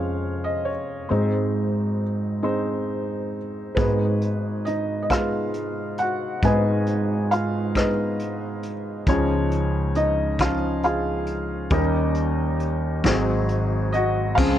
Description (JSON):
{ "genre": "acoustic folk-pop ballad", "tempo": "45 BPM (dotted quarters)", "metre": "6/8", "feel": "straight", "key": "unclear", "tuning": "A4 = 440 Hz", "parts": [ { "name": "felt-muted upright piano", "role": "melody", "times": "0.0-14.6 s", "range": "F1 to Ab5", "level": "-23 LUFS", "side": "equal", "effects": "none" }, { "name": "mellow fretless electric bass", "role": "bass", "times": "0.0-14.6 s", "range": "Ab1 to Ab2", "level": "-25 LUFS", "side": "right 1 dB", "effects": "none" }, { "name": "vintage brush drum kit", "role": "drums", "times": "3.8-14.6 s", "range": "crash cymbal, hi-hat, kick drum, rim click, snare drum", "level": "-25 LUFS", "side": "equal", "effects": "none" }, { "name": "warm chamber string section", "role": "sustained chords", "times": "14.4-14.6 s", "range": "Db3 to F4", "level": "-30 LUFS", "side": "right 3 dB", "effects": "none" } ], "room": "little or no reverb", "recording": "worn, warbling old tape, cassette tape, warbly pitch drift", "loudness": "-21 LUFS", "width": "side -11 dB against mid", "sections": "0.0-3.8 A section; 3.8-14.4 B section", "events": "none", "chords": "0.0 Db/F; 1.1 Ab; 9.1 Dbadd9; 11.7 Eb7; 13.0 Ab7" }